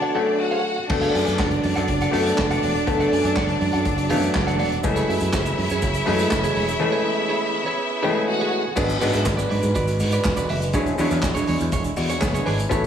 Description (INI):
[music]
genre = disco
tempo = 122 BPM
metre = 4/4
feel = straight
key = unclear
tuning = A4 = 439 Hz
[part]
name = clear studio string section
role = second line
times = 0.0-8.8 s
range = D4 to F#5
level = -26 LUFS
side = left 2 dB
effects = slapback echo
[part]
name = clean electric guitar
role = accompaniment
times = 0.0-12.9 s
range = D4 to G#5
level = -28 LUFS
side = right 5 dB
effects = spring reverb
[part]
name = clear French horn section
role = sustained chords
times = 0.0-12.9 s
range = D3 to B4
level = -28 LUFS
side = right 4 dB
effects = none
[part]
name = overdriven clav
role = accompaniment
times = 0.1-12.9 s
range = E3 to D5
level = -24 LUFS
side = left 4 dB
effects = none
[part]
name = fingered electric bass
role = bass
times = 0.9-12.9 s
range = E1 to G#2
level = -24 LUFS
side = right 1 dB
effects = none
[part]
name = vintage drum kit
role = drums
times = 0.9-12.9 s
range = crash cymbal, handclaps, hi-hat, kick drum, snare drum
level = -26 LUFS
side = equal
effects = gated reverb
[part]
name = egg shaker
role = percussion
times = 4.8-12.9 s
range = none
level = -40 LUFS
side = right 7 dB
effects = none
[sound]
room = light reverb, studio ambience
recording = studio reverb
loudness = -19 LUFS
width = side -8 dB against mid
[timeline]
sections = 0.9-8.8 A section; 8.8-12.9 B section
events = break 0.0-0.9; clav fill 11.7-12.7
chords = 0.0 Dmaj7; 0.9 Bm7; 4.8 Amaj7; 8.8 G#m7b5; 10.7 E13